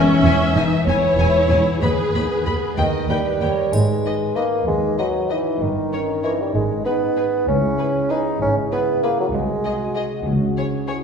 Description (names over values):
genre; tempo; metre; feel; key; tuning
cinematic, playful, whimsical film cue; 64 BPM (dotted quarters); 6/8; straight; G# minor; A4 = 440 Hz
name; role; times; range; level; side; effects
warm studio violin section; melody; 0.0-11.0 s; B4 to B5; -30 LUFS; left 5 dB; none
dark studio violin section; second line; 0.0-11.0 s; G#4 to E5; -24 LUFS; left 1 dB; none
warm studio viola section; accompaniment; 0.0-11.0 s; C#4 to G#4; -24 LUFS; equal; none
concert harp; arpeggios; 0.0-11.0 s; G2 to G#5; -26 LUFS; left 4 dB; none
rich studio cello section; bass; 0.2-11.0 s; B#1 to G#2; -26 LUFS; right 2 dB; none
warm studio double bass section; bass; 0.2-11.0 s; E1 to D#2; -25 LUFS; right 2 dB; none
mellow bassoon; accompaniment; 2.8-10.2 s; D#3 to D#4; -21 LUFS; right 2 dB; none
mellow French horn section; sustained chords; 3.7-11.0 s; D#4 to B4; -27 LUFS; left 4 dB; none
triangle; percussion; 3.7-4.9 s; none; -37 LUFS; left 1 dB; none
room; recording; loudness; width
wet recital hall reverb, RT60 1.8 s; heard from further back in the room; -17 LUFS; side -6 dB against mid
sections
0.0-3.7 A section; 3.7-11.0 B section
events
none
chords
0.0 E; 1.8 G#m/D#; 2.8 D#; 3.7 G#m; 5.6 D#7/G; 6.5 G#m; 7.5 C#m7; 9.3 G#7/B#; 10.3 C#m